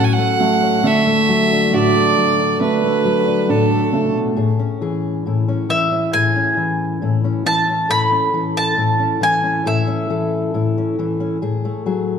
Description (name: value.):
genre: acoustic folk duo or small band.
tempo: 68 BPM.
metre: 4/4.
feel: straight.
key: A major.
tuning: A4 = 440 Hz.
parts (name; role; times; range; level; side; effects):
clear fiddle; second line; 0.0-4.2 s; A4 to G#5; -18 LUFS; right 5 dB; none.
fingerpicked steel-string acoustic guitar; accompaniment; 0.0-12.2 s; A2 to A4; -19 LUFS; left 4 dB; none.
warm upright piano; arpeggios; 0.0-4.5 s; A3 to F#4; -19 LUFS; right 4 dB; none.
mandolin; melody; 5.7-10.9 s; E5 to B5; -18 LUFS; equal; none.
room: wet recital hall reverb, RT60 1.7 s.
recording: none.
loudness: -15 LUFS.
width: side -7 dB against mid.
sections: 0.0-4.4 A section; 4.4-12.2 B section.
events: fiddle solo 0.0-4.4.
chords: 0.0 F#m/A; 0.8 D; 4.4 Amaj7; 11.4 F#madd9/A.